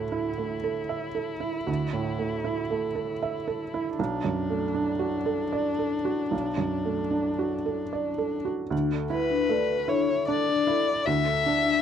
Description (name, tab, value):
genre	neoclassical piano and strings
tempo	77 BPM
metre	3/4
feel	rubato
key	unclear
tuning	A4 = 441 Hz
part	muted violin	melody	0.0-11.8 s	D4 to E5	-29 LUFS	left 5 dB	none
part	felt-muted upright piano	accompaniment	0.0-11.8 s	B1 to E5	-28 LUFS	right 6 dB	none
part	vibraphone with soft mallets	arpeggios	8.7-11.8 s	D4 to E5	-29 LUFS	left 14 dB	none
room	light reverb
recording	dry, close 1970s-style studio recording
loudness	-25 LUFS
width	side -8 dB against mid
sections	0.0-8.7 A section; 8.7-11.8 B section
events	none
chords	0.0 Dsus2; 4.0 Bm7; 8.7 Dsus2